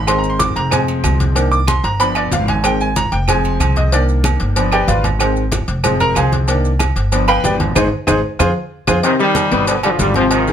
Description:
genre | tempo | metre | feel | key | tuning
latin, salsa | 188 BPM | 4/4 | straight | C minor | A4 = 442 Hz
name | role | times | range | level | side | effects
bright upright piano | accompaniment | 0.0-10.5 s | B2 to D6 | -17 LUFS | left 1 dB | none
upright bass | bass | 0.0-10.5 s | F1 to F2 | -18 LUFS | equal | none
agogo bells and timbales | percussion | 0.1-10.5 s | none | -24 LUFS | right 10 dB | none
claves | percussion | 0.1-9.0 s | none | -26 LUFS | right 4 dB | none
congas | percussion | 0.1-10.5 s | none | -23 LUFS | left 1 dB | none
cowbell | percussion | 0.1-10.5 s | none | -24 LUFS | left 2 dB | none
maracas | percussion | 0.1-10.5 s | none | -30 LUFS | right 4 dB | none
bright trombone section | melody | 9.0-10.5 s | C3 to G3 | -16 LUFS | left 1 dB | none
brilliant trombone section | second line | 9.0-10.5 s | Eb3 to G3 | -21 LUFS | right 2 dB | none
room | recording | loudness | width
light reverb | close, detailed microphones | -13 LUFS | side -9 dB against mid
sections
0.0-9.0 A section; 9.0-10.5 B section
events
upright piano solo 0.0-9.0; drum fill 7.8-9.0; band accent 7.8-9.0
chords
0.1 Ab; 0.7 Fm; 1.4 Cm7; 2.0 G7; 2.6 Ab; 3.3 Fm; 3.9 Cm7; 4.6 G7; 5.2 Ab; 5.8 Fm; 6.5 Cm7; 7.1 G7; 7.8 Ab; 8.4 Fm; 9.0 Cm; 9.7 G7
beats
| 0.08 0.40 0.72 1.04 | 1.36 1.68 2.00 2.32 | 2.64 2.96 3.28 3.60 | 3.92 4.24 4.56 4.88 | 5.20 5.52 5.84 6.16 | 6.48 6.80 7.12 7.44 | 7.76 8.08 8.40 8.72 | 9.04 9.36 9.68 9.99 | 10.31

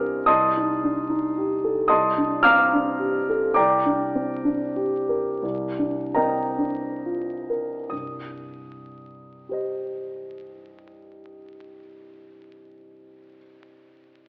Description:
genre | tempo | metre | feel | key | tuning
classical, impressionist solo piano | 31-56 BPM | 3/4 | rubato | C minor | A4 = 440 Hz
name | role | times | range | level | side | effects
dark concert grand piano | solo | 0.0-14.3 s | C2 to F6 | -24 LUFS | equal | none
room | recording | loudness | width
moderate scoring stage reverb, RT60 1.7 s | vinyl crackle, AM radio sound | -23 LUFS | mono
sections
0.0-7.9 A section; 7.9-12.6 B section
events
slowing down 0.0-7.9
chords
0.3 Cm6; 1.9 F13/C; 3.6 Csus2; 5.4 Bbadd9/C; 7.9 Cm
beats
| 0.28 1.36 2.44 | 3.57 4.76 6.17 | 7.90 9.49 11.08

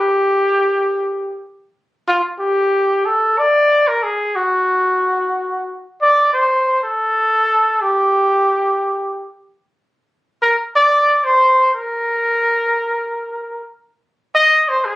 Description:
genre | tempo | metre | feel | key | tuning
jazz | free time | none | none | unclear | A4 = 440 Hz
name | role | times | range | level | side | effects
mellow trumpet | solo | 0.0-15.0 s | F4 to Eb5 | -14 LUFS | equal | none
room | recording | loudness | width
light reverb | recorded on a phone in the room, club reverb, compression | -14 LUFS | side -17 dB against mid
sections
0.0-9.9 A section; 9.9-15.0 B section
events
none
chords
none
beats
free time

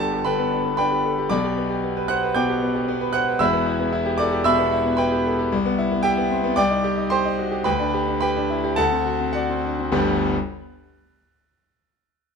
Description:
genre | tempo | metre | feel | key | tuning
classical, virtuoso piano study | 99-116 BPM | 4/4 | rubato | G major | A4 = 442 Hz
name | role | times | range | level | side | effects
clear concert grand piano | solo | 0.0-10.4 s | E1 to G6 | -19 LUFS | equal | none
room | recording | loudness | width
light reverb | minimal, uncompressed stereo recording | -19 LUFS | side -5 dB against mid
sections
0.0-9.9 A section; 9.9-12.2 B section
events
slowing down 4.5-9.9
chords
0.0 G; 1.3 G/B; 3.4 Em; 5.5 Cmaj7; 6.6 Cm; 7.7 G/D; 8.8 D7; 9.9 G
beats
0.26 0.79 | 1.31 1.83 2.36 2.88 | 3.41 3.93 4.46 4.99 | 5.52 6.05 6.58 7.12 | 7.67 8.22 8.78 9.34 | 9.93

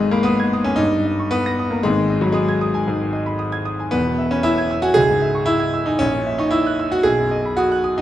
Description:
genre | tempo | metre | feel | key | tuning
classical, romantic character piece for solo piano | 115 BPM | 4/4 | rubato | unclear | A4 = 438 Hz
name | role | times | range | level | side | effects
clear grand piano | solo | 0.0-8.0 s | E1 to A#6 | -16 LUFS | equal | none
room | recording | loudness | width
wet recital hall reverb, RT60 1.6 s | none | -16 LUFS | side -12 dB against mid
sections
0.0-8.0 A section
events
none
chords
0.0 G#m; 0.8 D#7/G; 1.9 G#m; 3.9 E; 5.0 C#m; 6.0 F#7/A#; 7.1 B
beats
0.27 0.80 1.33 | 1.85 2.37 2.89 3.41 | 3.93 4.45 4.97 5.48 | 6.00 6.53 7.06 7.59

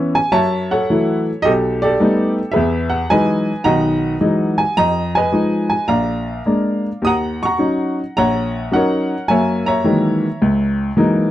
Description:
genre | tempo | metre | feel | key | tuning
solo jazz | 107 BPM | 4/4 | swing 69% on 8ths, rubato | unclear | A4 = 440 Hz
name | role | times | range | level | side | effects
clear upright piano | solo | 0.0-11.3 s | A#1 to D#6 | -14 LUFS | equal | none
room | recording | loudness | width
moderate booth ambience, RT60 0.2 s | dry, close 1970s-style studio recording | -15 LUFS | side -13 dB against mid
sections
0.0-11.3 A section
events
none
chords
0.3 F#m7; 1.4 B7alt; 2.5 Emaj9; 4.8 Fm7b5; 5.9 A#7; 7.0 D#m7; 9.3 F#13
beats
| 0.32 0.88 1.43 1.98 | 2.53 3.08 3.64 4.20 | 4.76 5.32 5.88 6.46 | 7.04 7.60 8.17 8.73 | 9.29 9.85 10.41 10.96

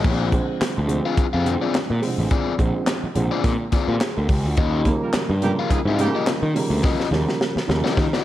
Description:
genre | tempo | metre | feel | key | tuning
funk | 106 BPM | 4/4 | swing 56% on 16ths | unclear | A4 = 437 Hz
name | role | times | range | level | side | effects
overdriven semi-hollow guitar | accompaniment | 0.0-8.2 s | C4 to F5 | -26 LUFS | left 7 dB | none
fuzz picked electric bass | bass | 0.0-8.1 s | A1 to Eb3 | -23 LUFS | equal | overdrive
tight funk drum kit | drums | 0.0-8.2 s | crash cymbal, handclaps, hi-hat, kick drum, snare drum | -23 LUFS | equal | none
dark upright piano | stabs | 0.3-8.1 s | C3 to Bb4 | -26 LUFS | right 3 dB | none
clear horn section | second line | 5.0-6.2 s | Db3 to Bb4 | -30 LUFS | right 5 dB | none
room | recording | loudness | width
light reverb, small room ambience | none | -19 LUFS | side -14 dB against mid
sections
0.0-8.2 A section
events
drum fill 6.8-8.2; upright piano fill 8.0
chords
0.0 Bb9; 4.6 Eb9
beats
| 0.04 0.61 1.17 1.74 | 2.31 2.87 3.44 4.01 | 4.58 5.14 5.71 6.28 | 6.84 7.41 7.98

